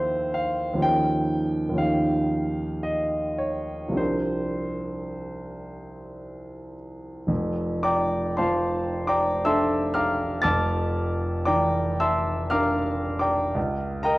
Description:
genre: classical, impressionist solo piano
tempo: 52-64 BPM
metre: 3/4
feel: rubato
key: unclear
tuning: A4 = 438 Hz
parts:
  - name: clear concert grand piano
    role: solo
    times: 0.0-14.2 s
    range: F1 to A6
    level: -23 LUFS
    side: equal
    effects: none
room: moderate recital hall reverb, RT60 1.5 s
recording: worn, warbling old tape, cassette tape, warbly pitch drift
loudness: -22 LUFS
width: side -19 dB against mid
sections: 0.0-7.3 A section; 7.3-14.2 B section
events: none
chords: 0.0 Fmaj7/Eb; 0.8 Eb9; 4.0 C9sus4; 7.3 Bbmaj7#11/F; 13.6 Db5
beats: | 0.84 1.81 2.85 | 3.99 5.12 6.19 | 7.29 8.39 9.47 | 10.47 11.49 12.52 | 13.56

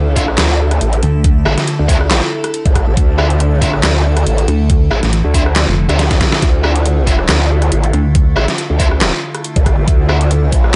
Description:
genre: heavy wobble dubstep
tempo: 139 BPM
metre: 4/4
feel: swing 54% on 16ths, half-time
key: D minor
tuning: A4 = 440 Hz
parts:
  - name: evolving wavetable pad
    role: sustained chords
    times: 0.0-10.8 s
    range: D3 to A4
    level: -23 LUFS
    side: equal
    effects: phaser, built-in reverb, sidechain pumping
  - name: growl bass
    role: bass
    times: 0.0-10.7 s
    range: A1 to D2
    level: -16 LUFS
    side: equal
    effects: distortion, chorus, overdrive
  - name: sludgy distorted guitar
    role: stabs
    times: 0.2-10.2 s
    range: D4 to E5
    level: -25 LUFS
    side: equal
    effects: overdrive, dub echo
  - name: dubstep drum kit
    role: drums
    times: 0.2-10.7 s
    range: handclaps, hi-hat, rim click, snare drum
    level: -20 LUFS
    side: equal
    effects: none
  - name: electronic kick drum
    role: drums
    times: 0.2-10.6 s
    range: none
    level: -16 LUFS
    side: equal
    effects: overdrive
  - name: pulsing pluck wobble bass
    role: bass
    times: 1.0-1.4, 4.5-8.3 s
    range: F1 to D2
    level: -15 LUFS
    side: equal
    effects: chorus, overdrive
room: light reverb, digital ambience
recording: dark, warm production, nothing above 10.4 kHz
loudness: -13 LUFS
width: mono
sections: 0.0-10.8 A section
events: drum fill 6.0-6.4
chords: 0.0 Dmadd9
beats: 0.38 0.81 | 1.24 1.68 2.11 2.54 | 2.97 3.40 3.83 4.26 | 4.70 5.13 5.56 5.99 | 6.42 6.86 7.29 7.72 | 8.15 8.58 9.01 9.45 | 9.88 10.31 10.74

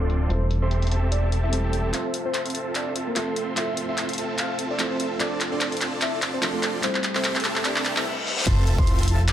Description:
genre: future bass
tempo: 147 BPM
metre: 4/4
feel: swing 56% on 16ths, half-time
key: F major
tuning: A4 = 441 Hz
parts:
  - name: soft octave-layered synth lead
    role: melody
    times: 0.0-9.3 s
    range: A4 to D6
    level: -31 LUFS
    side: equal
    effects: chorus, phaser, sidechain pumping, tape echo
  - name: felt-muted upright piano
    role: accompaniment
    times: 0.0-8.5 s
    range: F3 to E5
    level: -32 LUFS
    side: right 1 dB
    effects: sidechain pumping, tape echo
  - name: supersaw chords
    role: riff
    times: 0.0-9.3 s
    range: C4 to C6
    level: -29 LUFS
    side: right 1 dB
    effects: sidechain pumping, low-pass filter
  - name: fat analog bass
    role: bass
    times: 0.0-1.9, 8.5-9.3 s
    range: D1 to F1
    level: -22 LUFS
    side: equal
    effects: sidechain pumping
  - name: big-room dance drum kit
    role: drums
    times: 0.1-9.3 s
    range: crash cymbal, handclaps, hi-hat, snare drum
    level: -27 LUFS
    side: equal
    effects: high-pass filter on hats, small room ambience, high-pass filter on snare, high-pass filter on cymbals
  - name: riser, reverse cymbal and sub drop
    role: sound effects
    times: 6.2-9.3 s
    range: none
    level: -31 LUFS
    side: left 1 dB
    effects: none
  - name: airy dreamy lead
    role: arpeggios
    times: 8.5-9.3 s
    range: A5 to C6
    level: -36 LUFS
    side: left 2 dB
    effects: chorus, cassette tape, sidechain pumping
  - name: thumb-piano-like synth pluck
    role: arpeggios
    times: 8.5-9.3 s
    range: E4 to C5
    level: -38 LUFS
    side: right 4 dB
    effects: chorus, sidechain pumping
  - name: electronic kick drum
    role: drums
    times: 8.5-8.9 s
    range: none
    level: -22 LUFS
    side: equal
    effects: small room ambience
room: light reverb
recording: low-pass filter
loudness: -22 LUFS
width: side -11 dB against mid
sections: 0.0-1.9 A section; 1.9-8.5 B section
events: filter sweep 0.0-1.9; build-up 1.9-8.5; drum fill 1.9-8.1, 8.3; filter sweep on supersaw synth 1.9-8.5; reverse cymbal 7.7-8.5; stop 8.1-8.5; impact 8.5-9.3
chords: 0.3 Am7/E; 1.9 Fmaj7; 5.2 Dm7; 6.8 Am7; 8.5 Fmaj7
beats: | 0.30 0.71 1.12 1.53 | 1.94 2.34 2.75 3.16 | 3.57 3.98 4.38 4.79 | 5.20 5.61 6.02 6.43 | 6.83 7.24 7.65 8.06 | 8.47 8.88 9.28

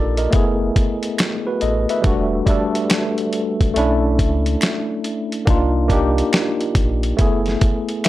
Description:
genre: lo-fi hip hop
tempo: 70 BPM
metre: 4/4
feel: swing 65% on 16ths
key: E minor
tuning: A4 = 440 Hz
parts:
  - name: mellow tine electric piano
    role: accompaniment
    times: 0.0-8.1 s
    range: G3 to E5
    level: -19 LUFS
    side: equal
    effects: medium stereo tremolo, cassette tape
  - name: sub bass with octave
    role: bass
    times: 0.0-7.6 s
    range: E1 to C#2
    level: -21 LUFS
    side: equal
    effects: none
  - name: dusty soul sampler-style drum kit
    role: drums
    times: 0.2-8.1 s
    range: hi-hat, kick drum, snare drum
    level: -19 LUFS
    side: equal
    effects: none
  - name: finger snaps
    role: percussion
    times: 1.2-8.1 s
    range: none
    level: -28 LUFS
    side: right 4 dB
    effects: none
room: little or no reverb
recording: dry, gritty hardware recording, transformer saturation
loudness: -16 LUFS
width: side -15 dB against mid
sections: 0.0-8.1 A section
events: none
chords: 0.3 F#m11; 2.0 Em11; 3.8 Bm11; 5.5 Cm11; 7.2 F#m11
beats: 0.33 1.19 | 2.04 2.90 3.76 4.61 | 5.47 6.33 7.18 8.04

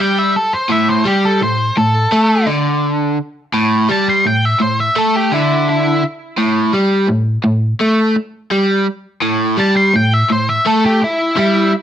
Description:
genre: rock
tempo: 84 BPM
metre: 4/4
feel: straight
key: unclear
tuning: A4 = 440 Hz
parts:
  - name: octave-fuzz lead guitar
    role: melody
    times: 0.0-11.7 s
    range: E4 to C6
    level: -15 LUFS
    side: equal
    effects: distortion
  - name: overdriven electric guitar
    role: riff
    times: 0.0-11.7 s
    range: A2 to A3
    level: -14 LUFS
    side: equal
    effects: none
room: moderate studio reverb, RT60 0.8 s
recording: none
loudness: -12 LUFS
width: side -10 dB against mid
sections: 0.0-11.8 A section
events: lead electric guitar solo 0.0-11.8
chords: none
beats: | 0.35 1.06 1.77 2.48 | 3.19 3.90 4.61 5.32 | 6.03 6.74 7.45 8.16 | 8.87 9.58 10.29 11.01 | 11.72

